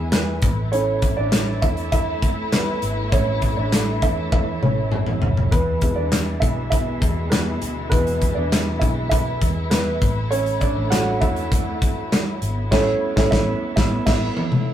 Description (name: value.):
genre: piano-driven pop.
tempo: 100 BPM.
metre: 4/4.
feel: straight.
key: A major.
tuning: A4 = 436 Hz.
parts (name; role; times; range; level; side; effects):
dark baby grand piano; accompaniment; 0.0-14.7 s; G#3 to F#5; -24 LUFS; right 2 dB; none.
warm studio string section; sustained chords; 0.0-14.7 s; B2 to G#4; -29 LUFS; equal; none.
vintage muted fingered electric bass; bass; 0.0-14.3 s; F#1 to E2; -26 LUFS; equal; none.
modern studio drum kit; drums; 0.1-14.7 s; crash cymbal, handclaps, hi-hat, kick drum, snare drum, toms; -21 LUFS; left 1 dB; none.
room: moderate studio ambience, RT60 0.5 s.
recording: rough rehearsal-room recording, warm saturation.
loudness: -18 LUFS.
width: side -10 dB against mid.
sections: 0.0-14.7 A section.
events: grand piano solo 0.0-14.7; drum fill 4.3-5.5, 13.9-14.7; band accent 12.7-14.7.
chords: 0.4 A; 5.5 E; 10.0 A.